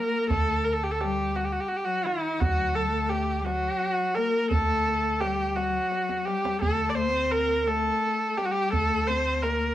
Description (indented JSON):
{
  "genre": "Persian modal ensemble",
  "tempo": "57 BPM (dotted quarters)",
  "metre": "6/8",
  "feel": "straight",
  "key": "D dastgah homayun",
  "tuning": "A4 = 440 Hz",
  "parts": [
    { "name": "clear kamancheh", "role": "melody", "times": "0.0-9.7 s", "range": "Eb4+43c to D5", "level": "-25 LUFS", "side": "right 1 dB", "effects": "cassette tape" },
    { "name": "clear cello", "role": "second line", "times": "0.0-9.7 s", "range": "Eb3+45c to C4", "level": "-32 LUFS", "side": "left 7 dB", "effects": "cassette tape" },
    { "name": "upright bass", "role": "bass", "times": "0.3-9.7 s", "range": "D2", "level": "-32 LUFS", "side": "equal", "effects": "none" },
    { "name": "tombak", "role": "percussion", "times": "0.3-9.6 s", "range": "none", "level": "-32 LUFS", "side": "right 3 dB", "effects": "none" }
  ],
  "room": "light reverb, small room ambience",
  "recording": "home recording on cassette",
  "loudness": "-24 LUFS",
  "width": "side -13 dB against mid",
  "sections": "0.0-9.7 A section",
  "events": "drum fill 5.9-6.6",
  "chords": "none"
}